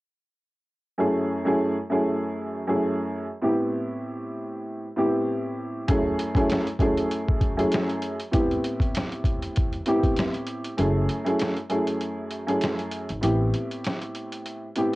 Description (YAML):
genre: hip hop, boom-bap hip-hop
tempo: 98 BPM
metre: 4/4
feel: swing 56% on 16ths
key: F# minor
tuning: A4 = 440 Hz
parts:
  - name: dark upright piano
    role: accompaniment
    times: 1.0-15.0 s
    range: F#2 to G#4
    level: -24 LUFS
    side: equal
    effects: cassette tape, high-pass filter, low-pass filter
  - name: trip hop sampler-style drum kit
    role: drums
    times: 5.9-14.9 s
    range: hi-hat, kick drum, snare drum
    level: -26 LUFS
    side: equal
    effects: cassette tape
  - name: upright bass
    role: bass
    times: 10.8-13.5 s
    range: F#1 to A1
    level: -24 LUFS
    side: equal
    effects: none
room: light reverb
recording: home recording on cassette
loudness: -23 LUFS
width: side -20 dB against mid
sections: 1.0-10.8 A section; 10.8-15.0 B section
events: kick muted 10.8-15.0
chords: 1.0 F#m7; 3.4 Am7; 5.9 F#m7; 8.3 Am7; 10.8 F#m7; 13.2 Am7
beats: | 0.99 1.60 2.21 2.82 | 3.44 4.05 4.66 5.27 | 5.88 6.50 7.11 7.72 | 8.33 8.95 9.56 10.17 | 10.78 11.39 12.01 12.62 | 13.23 13.84 14.46